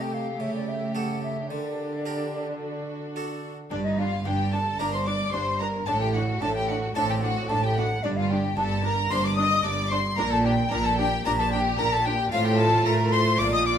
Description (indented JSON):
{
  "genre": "classical, baroque-style concerto movement with solo episodes",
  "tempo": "111 BPM",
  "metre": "4/4",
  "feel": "straight",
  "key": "G minor",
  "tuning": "A4 = 440 Hz",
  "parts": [
    { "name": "mellow hollow silver concert flute", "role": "melody", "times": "0.0-13.8 s", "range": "D5 to Eb6", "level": "-28 LUFS", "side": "left 2 dB", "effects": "none" },
    { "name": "warm chamber violin section", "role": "melody", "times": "0.0-13.7 s", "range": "A4 to Eb6", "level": "-32 LUFS", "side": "left 4 dB", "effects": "none" },
    { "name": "warm studio violin section", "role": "second line", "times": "0.0-13.8 s", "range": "D4 to Eb5", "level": "-33 LUFS", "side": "left 2 dB", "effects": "none" },
    { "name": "harpsichord", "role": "accompaniment", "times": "0.0-13.8 s", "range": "G2 to Bb4", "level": "-35 LUFS", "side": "equal", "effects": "none" },
    { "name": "warm chamber viola section", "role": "accompaniment", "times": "0.0-13.8 s", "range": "A3 to F4", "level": "-33 LUFS", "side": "right 1 dB", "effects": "none" },
    { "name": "warm chamber cello section", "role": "bass", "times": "0.0-13.8 s", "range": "G2 to A3", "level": "-28 LUFS", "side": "right 2 dB", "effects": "none" },
    { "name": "dark studio double bass section", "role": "bass", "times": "3.7-13.8 s", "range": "G1 to A2", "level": "-30 LUFS", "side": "right 3 dB", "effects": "none" }
  ],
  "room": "moderate recital hall reverb, RT60 1.4 s",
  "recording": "close, detailed microphones, lossy compression artefacts",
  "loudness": "-23 LUFS",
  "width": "side -8 dB against mid",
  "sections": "0.0-3.7 A section; 3.7-13.8 B section",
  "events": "none",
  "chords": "0.4 A7/C#; 1.5 Gm/D; 2.6 D; 3.7 Gm; 5.9 D5/A; 8.0 Gm; 10.2 Gm/Bb; 12.3 F/A",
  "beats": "0.40 0.94 | 1.50 2.05 2.61 3.16 | 3.71 4.25 4.79 5.33 | 5.87 6.41 6.96 7.50 | 8.04 8.57 9.11 9.64 | 10.18 10.71 11.25 11.79 | 12.32 12.86 13.40"
}